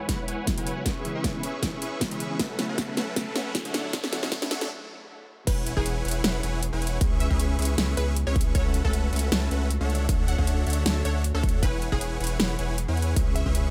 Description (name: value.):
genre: future bass.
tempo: 156 BPM.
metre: 4/4.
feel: swing 54% on 16ths, half-time.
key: E mixolydian.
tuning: A4 = 438 Hz.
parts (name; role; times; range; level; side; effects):
muted studio string section; sustained chords; 0.0-13.7 s; D2 to G#4; -42 LUFS; equal; none.
supersaw chords; riff; 0.0-13.7 s; C#4 to C#6; -34 LUFS; equal; sidechain pumping, low-pass filter.
riser; sound effects; 2.1-4.7 s; none; -44 LUFS; equal; none.
bell-like tine electric piano; accompaniment; 0.1-4.5 s; C#3 to E4; -38 LUFS; equal; phaser, sidechain pumping, dub echo.
big-room dance drum kit; drums; 0.1-13.6 s; crash cymbal, hi-hat, snare drum; -32 LUFS; equal; none.
electronic kick drum; drums; 0.1-13.5 s; none; -29 LUFS; equal; none.
unison pluck; melody; 5.5-13.6 s; G#4 to F#5; -39 LUFS; equal; cassette tape, sidechain pumping, dub echo.
saturated sub bass; bass; 5.5-13.7 s; E1 to E2; -29 LUFS; equal; sidechain pumping.
room: little or no reverb.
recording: high-pass filter.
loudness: -26 LUFS.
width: mono.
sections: 0.0-5.5 A section; 5.5-13.7 B section.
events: build-up 0.0-5.5; drum fill 0.0-4.7; filter sweep 0.0-5.5; break 4.7-5.5; drop 5.5-13.7.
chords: 0.0 E6; 0.9 C#m7; 2.4 A6/C#; 3.7 Dmaj7; 5.5 E6; 7.0 C#m7; 8.5 A6/C#; 9.9 Dmaj7; 11.6 E6; 13.2 C#m7.